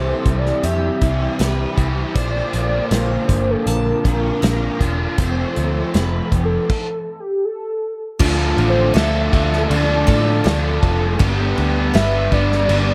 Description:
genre	rock, shoegaze and dream pop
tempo	80 BPM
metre	4/4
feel	straight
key	unclear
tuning	A4 = 441 Hz
part	warm velvety synth lead	melody	0.0-12.9 s	G4 to E5	-25 LUFS	equal	chorus, analog delay
part	dark analog pad	sustained chords	0.0-6.7 s	G4 to E6	-33 LUFS	equal	chorus, plate reverb
part	picked twelve-string acoustic guitar	arpeggios	0.0-12.9 s	F4 to A5	-32 LUFS	equal	lush chorus, analog delay, plate reverb
part	overdriven electric guitar	riff	0.0-12.9 s	F2 to B4	-26 LUFS	equal	reverse reverb
part	raw garage guitar	riff	0.0-12.9 s	F2 to B4	-28 LUFS	equal	overdrive, analog chorus
part	vintage muted picked electric bass	bass	0.0-12.9 s	E1 to A2	-22 LUFS	equal	none
part	loose indie drum kit	drums	0.3-12.9 s	crash cymbal, hi-hat, kick drum, snare drum	-23 LUFS	equal	none
part	biting overdriven guitar	riff	8.2-12.9 s	G2 to D4	-28 LUFS	equal	spring reverb
room	moderate studio ambience, RT60 0.5 s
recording	none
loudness	-18 LUFS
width	mono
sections	0.0-8.2 A section; 8.2-12.9 A section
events	stop 6.7-8.2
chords	0.0 Cadd9; 2.1 Bbadd9; 5.2 Fmaj7; 8.2 Dm; 11.2 G

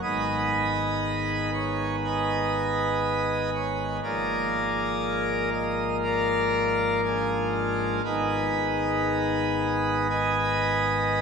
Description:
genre	classical, chorale-style piece for pipe organ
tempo	60 BPM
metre	4/4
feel	rubato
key	G# minor from 8.0 s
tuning	A4 = 439 Hz
part	pipe organ, plenum	solo	0.0-11.2 s	Ab1 to G#5	-23 LUFS	equal	none
room	wet church reverb, RT60 3.4 s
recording	recorded in a church or concert hall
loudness	-23 LUFS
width	side -6 dB against mid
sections	0.0-11.2 A section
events	none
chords	0.0 Abm; 4.0 Bb7/Ab; 8.0 G#m

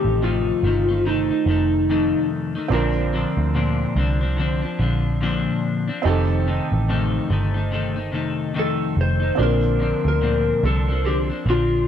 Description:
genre	indie pop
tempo	72 BPM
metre	4/4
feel	swing 60% on 16ths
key	Bb major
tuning	A4 = 439 Hz
part	electric slide guitar	melody	0.0-2.3, 8.6-11.9 s	Eb4 to C5	-22 LUFS	left 1 dB	wide subtle chorus
part	clean electric guitar	accompaniment	0.0-11.9 s	F2 to Eb4	-24 LUFS	left 4 dB	lush chorus, vibrato effect
part	warm upright piano	accompaniment	0.0-11.9 s	Bb3 to Bb4	-29 LUFS	right 10 dB	none
part	vintage muted picked electric bass	bass	0.0-11.9 s	F1 to D2	-22 LUFS	right 1 dB	none
room	little or no reverb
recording	dry, close 1970s-style studio recording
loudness	-18 LUFS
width	side -9 dB against mid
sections	0.0-11.9 A section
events	none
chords	0.0 F7; 2.7 Bbadd9; 6.0 F7; 9.4 Bbadd9

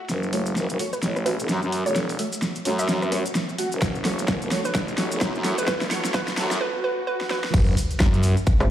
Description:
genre	bass house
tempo	129 BPM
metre	4/4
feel	swing 59% on 16ths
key	F# minor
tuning	A4 = 443 Hz
part	band-passed chord stab	stabs	0.0-6.6 s	A3 to F#5	-30 LUFS	right 1 dB	phaser, ensemble chorus, sidechain pumping, ping-pong delay
part	big-room dance drum kit	drums	0.0-8.7 s	crash cymbal, hi-hat, ride cymbal, rim click, snare drum	-27 LUFS	equal	overdrive, low-pass filter on hats, studio reverb, low-pass filter on snare, low-pass filter on cymbals
part	swell, riser and sub drop	sound effects	0.0-8.7 s	none	-32 LUFS	equal	none
part	growling FM bass	bass	0.1-8.3 s	E1 to F#2	-25 LUFS	equal	overdrive, sidechain pumping, high-pass filter
part	maracas	percussion	0.1-8.7 s	none	-37 LUFS	left 1 dB	none
part	hollow square pluck	melody	0.9-7.5 s	B4 to E5	-30 LUFS	right 2 dB	chorus, ping-pong delay
part	electronic kick drum	drums	3.8-8.6 s	none	-22 LUFS	equal	overdrive, studio reverb
part	pulsing pluck wobble bass	bass	8.6-8.7 s	G#1	-18 LUFS	equal	chorus, overdrive, sidechain pumping
room	moderate lush hall reverb, RT60 2.0 s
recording	played on a big sound system in a bare room, large studio reverb, high-pass filter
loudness	-21 LUFS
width	side -11 dB against mid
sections	0.1-7.5 A section; 7.5-8.7 B section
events	build-up 0.1-7.5; drum fill 0.1-6.6, 7.2-7.5; riser 0.1-6.6; filter sweep on synth stab 0.1-7.5; swell 6.6-7.5; drop 7.5-8.7; impact 7.5-8.7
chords	0.1 F#m; 7.5 N.C.

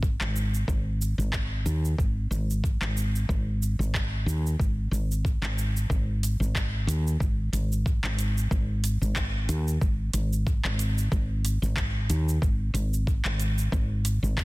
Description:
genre	organic downtempo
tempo	92 BPM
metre	4/4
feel	swing 56% on 16ths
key	unclear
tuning	A4 = 439 Hz
part	woody fretless electric bass	bass	0.0-14.4 s	G#1 to D#2	-26 LUFS	equal	none
part	afro-pop drum kit	drums	0.0-14.4 s	handclaps, hi-hat, shaker	-34 LUFS	right 1 dB	overdrive, small room ambience
part	electronic kick drum	drums	0.0-14.4 s	none	-27 LUFS	equal	small room ambience
room	little or no reverb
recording	dense, heavily limited modern master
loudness	-24 LUFS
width	side -21 dB against mid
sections	0.0-5.9 A section; 5.9-14.4 B section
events	none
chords	none

